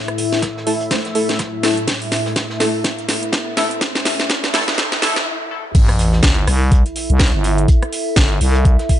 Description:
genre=bass house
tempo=124 BPM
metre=4/4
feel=swing 58% on 16ths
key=A minor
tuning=A4 = 440 Hz
part: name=sweeping resonant pad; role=sustained chords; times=0.0-5.2 s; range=A2 to E5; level=-24 LUFS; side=left 2 dB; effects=chorus, phaser, vintage 12-bit sampler grit, sidechain pumping
part: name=riser, noise sweep and sub drop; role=sound effects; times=1.1-7.7 s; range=none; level=-28 LUFS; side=equal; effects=none
part: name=warbly tape-like pad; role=texture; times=0.0-9.0 s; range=E4 to E5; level=-28 LUFS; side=right 1 dB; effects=chorus, built-in reverb, sidechain pumping
part: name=house drum kit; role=drums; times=0.1-9.0 s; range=crash cymbal, hi-hat, rim click, snare drum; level=-20 LUFS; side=equal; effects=none
part: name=vintage brush drum kit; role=drums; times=0.2-9.0 s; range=hi-hat, snare drum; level=-31 LUFS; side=right 1 dB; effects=none
part: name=electronic kick drum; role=drums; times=0.4-9.0 s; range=none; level=-14 LUFS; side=equal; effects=high-pass filter on kick
part: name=band-passed chord stab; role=stabs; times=0.7-5.2 s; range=A3 to C5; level=-22 LUFS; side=equal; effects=chorus, sidechain pumping, ping-pong delay
part: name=growling FM bass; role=bass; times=5.7-8.8 s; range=G1 to C2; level=-16 LUFS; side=equal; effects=tube saturation, sidechain pumping
room=light reverb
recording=high-pass filter, nothing above 10.4 kHz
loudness=-14 LUFS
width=side -12 dB against mid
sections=0.0-5.7 A section; 5.7-9.0 B section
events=build-up 0.0-5.7; drum fill 0.0-5.3; filter sweep on synth stab 0.0-5.7; filter sweep 0.0-5.7; riser 1.1-5.3; noise sweep 3.8-5.7; stop 5.3-5.7; drop 5.7-9.0; impact 5.7-7.7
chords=0.0 A5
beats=0.42 0.91 1.39 | 1.88 2.36 2.85 3.33 | 3.81 4.30 4.78 5.26 | 5.75 6.23 6.72 7.20 | 7.68 8.17 8.65

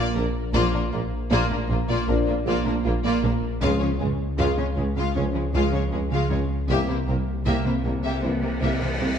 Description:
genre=cinematic, hybrid orchestral and electronic film score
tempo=78 BPM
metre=4/4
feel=straight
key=unclear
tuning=A4 = 440 Hz
part: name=warm symphonic violin section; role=melody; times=0.0-9.1 s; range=F4 to F5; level=-33 LUFS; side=left 6 dB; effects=none
part: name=warm symphonic violin section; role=second line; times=0.0-9.1 s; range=Ab3 to G4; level=-31 LUFS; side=left 5 dB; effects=none
part: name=rich symphonic viola section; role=accompaniment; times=0.0-9.1 s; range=Ab3 to Bb3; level=-31 LUFS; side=right 2 dB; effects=none
part: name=harp-like synth pluck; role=arpeggios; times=0.0-9.1 s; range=C3 to Bb4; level=-30 LUFS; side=right 3 dB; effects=chorus
part: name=dark detuned saw bass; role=bass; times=0.0-9.2 s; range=Bb1 to Db2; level=-29 LUFS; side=left 1 dB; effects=none
part: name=warm symphonic cello section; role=bass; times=0.0-9.1 s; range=Bb2 to Db3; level=-30 LUFS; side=right 2 dB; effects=none
part: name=rich symphonic double bass section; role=bass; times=0.1-9.1 s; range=Bb1 to Db2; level=-30 LUFS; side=right 2 dB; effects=none
part: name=clear tuba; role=bass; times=0.2-9.1 s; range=Bb1 to Db2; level=-31 LUFS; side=right 3 dB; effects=none
part: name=dark French horn section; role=sustained chords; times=0.5-8.5 s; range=E3 to D4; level=-30 LUFS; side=left 5 dB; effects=none
part: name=cymbal swell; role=sound effects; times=7.8-9.2 s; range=none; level=-33 LUFS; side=equal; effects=none
room=moderate scoring stage reverb, RT60 1.5 s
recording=dark, warm production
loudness=-21 LUFS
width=side -8 dB against mid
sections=0.0-9.2 A section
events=cymbal swell 7.8-9.2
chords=0.0 Bb; 3.6 Db; 6.7 C7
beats=| 0.54 1.31 2.08 2.85 | 3.62 4.39 5.16 5.93 | 6.70 7.46 8.23 9.00

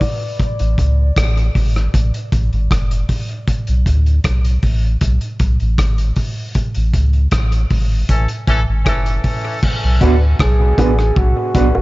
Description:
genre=dub reggae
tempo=78 BPM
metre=4/4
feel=straight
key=B dorian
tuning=A4 = 441 Hz
part: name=breathy flugelhorn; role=melody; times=0.0-0.4, 10.4-11.8 s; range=F#4 to D5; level=-24 LUFS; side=equal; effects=low-pass filter, dub echo
part: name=vintage drum kit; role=drums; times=0.0-11.7 s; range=crash cymbal, hi-hat, kick drum, rim click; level=-18 LUFS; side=equal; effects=none
part: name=bongos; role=percussion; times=0.0-1.0, 10.0-11.8 s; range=none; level=-25 LUFS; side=right 1 dB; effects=none
part: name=warm sub bass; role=bass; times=0.6-11.8 s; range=F#1 to D2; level=-15 LUFS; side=equal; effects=none
part: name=clear horn section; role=second line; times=8.1-9.6 s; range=E3 to A4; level=-24 LUFS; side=left 1 dB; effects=dub echo
part: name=mellow electric guitar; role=accompaniment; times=10.0-11.7 s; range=B3 to B4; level=-21 LUFS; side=right 7 dB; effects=tremolo, low-pass filter, dub echo
part: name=dark grand piano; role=stabs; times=10.0-11.7 s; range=D4 to B4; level=-24 LUFS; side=left 4 dB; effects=low-pass filter, dub echo
room=studio ambience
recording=echo-heavy mix, nothing above 7.6 kHz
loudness=-13 LUFS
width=side -20 dB against mid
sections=0.0-9.6 A section; 9.6-11.8 B section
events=break 0.0-9.6; part muted 0.4-9.6; band accent 6.6-9.6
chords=0.4 A; 3.5 Bm; 6.6 A; 9.6 Bm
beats=| 0.39 1.17 1.94 2.71 | 3.48 4.25 5.02 5.79 | 6.56 7.33 8.10 8.86 | 9.63 10.40 11.17

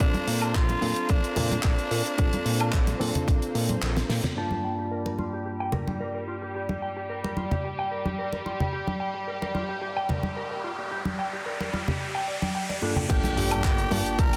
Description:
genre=nu-disco, nu disco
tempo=110 BPM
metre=4/4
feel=straight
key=G minor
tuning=A4 = 436 Hz
part: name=growling tenor saxophone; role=melody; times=0.0-3.8, 13.1-14.4 s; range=D4 to Bb4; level=-34 LUFS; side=equal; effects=tape echo
part: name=bright reed electric piano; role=accompaniment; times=0.0-14.4 s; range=G2 to A5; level=-35 LUFS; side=equal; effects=tape echo
part: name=clear studio string section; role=sustained chords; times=0.0-14.4 s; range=G3 to D5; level=-38 LUFS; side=equal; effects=sidechain pumping, low-pass filter
part: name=fat analog bass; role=bass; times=0.0-4.2, 13.1-14.3 s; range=G1 to Bb2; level=-31 LUFS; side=equal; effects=none
part: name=damped 70s drum kit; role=drums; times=0.0-4.3, 13.1-14.4 s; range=crash cymbal, handclaps, hi-hat, snare drum, woodblock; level=-34 LUFS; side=equal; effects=studio reverb
part: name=electronic kick drum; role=drums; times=0.0-3.4, 13.1-14.3 s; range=none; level=-26 LUFS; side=equal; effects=studio reverb
part: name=congas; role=percussion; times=0.1-14.0 s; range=none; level=-34 LUFS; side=equal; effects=none
part: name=electric guitar with an envelope filter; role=riff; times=4.4-14.4 s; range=D4 to G5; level=-37 LUFS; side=equal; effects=lush chorus, low-pass filter, tape echo
part: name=riser and impact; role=sound effects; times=9.6-14.4 s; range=none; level=-36 LUFS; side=equal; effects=none
room=moderate plate reverb, RT60 1.8 s, studio ambience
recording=dense, heavily limited modern master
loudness=-27 LUFS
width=mono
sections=0.0-4.4 A section; 4.4-13.1 B section; 13.1-14.4 C section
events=kick drops out 3.8-4.4; drum fill 3.8-4.4; band accent 4.2; filter sweep on clean electric guitar 4.4-13.1; filter sweep on string section 4.4-13.1; riser 9.6-13.1; drop 13.1-14.4; impact 13.1-14.4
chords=0.0 Bbmaj7; 4.4 Gm7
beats=| 0.01 0.55 1.10 1.64 | 2.19 2.73 3.28 3.82 | 4.37 4.91 5.46 6.00 | 6.55 7.10 7.64 8.19 | 8.73 9.28 9.82 10.37 | 10.91 11.46 12.01 12.55 | 13.10 13.64 14.19

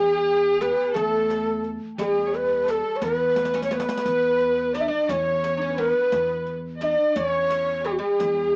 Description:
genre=Arabic maqam ensemble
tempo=58 BPM (dotted quarters)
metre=6/8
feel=straight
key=E maqam rast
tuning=A4 = 440 Hz
part: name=breathy mellow ney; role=melody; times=0.0-8.6 s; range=F#4 to E5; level=-24 LUFS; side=equal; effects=cassette tape
part: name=dark studio violin section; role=second line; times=0.0-8.6 s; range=G#4-50c to D5+50c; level=-31 LUFS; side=equal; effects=cassette tape
part: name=oud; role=second line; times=0.0-8.6 s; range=G#3-50c to D4+50c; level=-35 LUFS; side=equal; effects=cassette tape, plate reverb
part: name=upright bass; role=bass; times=0.0-8.6 s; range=E2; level=-37 LUFS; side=equal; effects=transformer saturation
part: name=riq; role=percussion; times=0.3-8.4 s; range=none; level=-36 LUFS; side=equal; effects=none
room=wet booth ambience, RT60 0.2 s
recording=home recording on cassette, small speaker sound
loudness=-23 LUFS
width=mono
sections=0.0-8.6 A section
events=drum fill 3.4-4.1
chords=none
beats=0.95 | 1.99 3.02 | 4.05 5.09 | 6.12 7.16 | 8.19

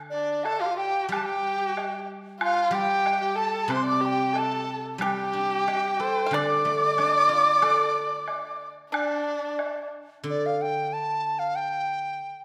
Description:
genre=chinese traditional, Chinese chamber ensemble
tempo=92 BPM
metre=2/4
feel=rubato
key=D yu mode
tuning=A4 = 441 Hz
part: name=guzheng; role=accompaniment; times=0.0-12.2 s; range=C3 to A4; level=-34 LUFS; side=equal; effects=none
part: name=bright reedy large dizi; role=melody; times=0.1-12.4 s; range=D5 to D6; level=-28 LUFS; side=equal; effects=none
part: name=warm erhu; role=second line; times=0.1-9.9 s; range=D4 to D5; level=-32 LUFS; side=equal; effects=none
part: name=woodblock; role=percussion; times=0.5-9.7 s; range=none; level=-37 LUFS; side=equal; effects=none
part: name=pipa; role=second line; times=5.0-9.9 s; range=D4 to F5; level=-35 LUFS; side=equal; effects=none
room=wet recital hall reverb, RT60 1.6 s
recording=none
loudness=-25 LUFS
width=mono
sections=0.0-10.2 A section; 10.2-12.4 B section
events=none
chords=none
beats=0.45 | 1.11 1.77 | 2.41 3.05 | 3.69 4.34 | 5.01 5.67 | 6.33 6.98 | 7.62 8.28 | 8.93 9.59 | 10.25 10.90 | 11.55 12.20

